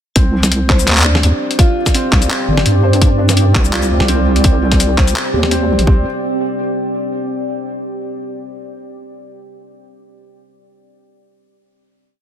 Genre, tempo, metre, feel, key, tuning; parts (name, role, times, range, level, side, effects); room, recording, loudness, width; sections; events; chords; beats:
half-time drum and bass; 168 BPM; 4/4; swing 53% on 16ths, half-time; C minor; A4 = 440 Hz
deep dark ambient pad; sustained chords; 1.1-6.0 s; C4 to D5; -21 LUFS; right 1 dB; chorus, built-in reverb, sidechain pumping
felt-muted upright piano; arpeggios; 0.2-6.0 s; C4 to C5; -21 LUFS; right 1 dB; tape echo
deep soft wobble bass; bass; 0.2-6.0 s; G1 to G2; -14 LUFS; equal; chorus
boom bap sampler-style drum kit; drums; 0.2-5.9 s; handclaps, hi-hat, shaker, snare drum; -17 LUFS; left 1 dB; small room ambience, soft clipping on snare
electronic kick drum; drums; 0.2-5.9 s; -12 LUFS; equal; small room ambience
little or no reverb; dense, heavily limited modern master; -11 LUFS; side -10 dB against mid
0.2-5.9 drop; 5.9-7.3 final chord
drop 0.2-5.9
0.2 Cmadd9; 5.9 Csus2
| 0.16 0.52 0.87 1.23 | 1.59 1.94 2.30 2.66 | 3.02 3.37 3.73 4.09 | 4.44 4.80 5.16 5.51 | 5.87